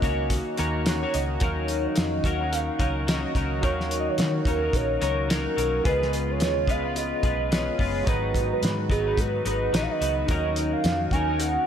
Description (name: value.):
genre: indie pop, bedroom pop.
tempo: 108 BPM.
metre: 4/4.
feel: swing 60% on 16ths.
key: Eb minor.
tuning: A4 = 440 Hz.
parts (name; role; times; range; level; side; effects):
warm velvety synth lead; melody; 0.0-11.7 s; Ab4 to Ab5; -28 LUFS; right 2 dB; analog chorus, slapback echo.
twelve-string electric guitar; accompaniment; 0.0-11.7 s; Ab2 to Db5; -30 LUFS; left 4 dB; lush chorus, warbly pitch drift, slapback echo.
warbly lo-fi synth keys; accompaniment; 0.0-11.7 s; Eb4 to Bb5; -35 LUFS; right 3 dB; chorus, cassette tape, slapback echo.
mellow brass ensemble; sustained chords; 0.0-11.7 s; Db3 to Gb4; -36 LUFS; left 1 dB; none.
vintage muted fingered electric bass; bass; 0.0-11.6 s; Gb1 to Eb3; -29 LUFS; equal; none.
cloth-damped thuddy drum kit; drums; 0.0-11.6 s; hi-hat, kick drum, snare drum; -27 LUFS; equal; none.
room: moderate lush hall reverb, RT60 2.7 s.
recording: big arena sound.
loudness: -22 LUFS.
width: side -8 dB against mid.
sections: 0.0-1.4 A section; 1.4-11.7 B section.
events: synth keys fill 0.3-1.4.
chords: 0.0 Ebm7; 5.9 Db7; 8.1 Abm7; 10.3 Ebm7.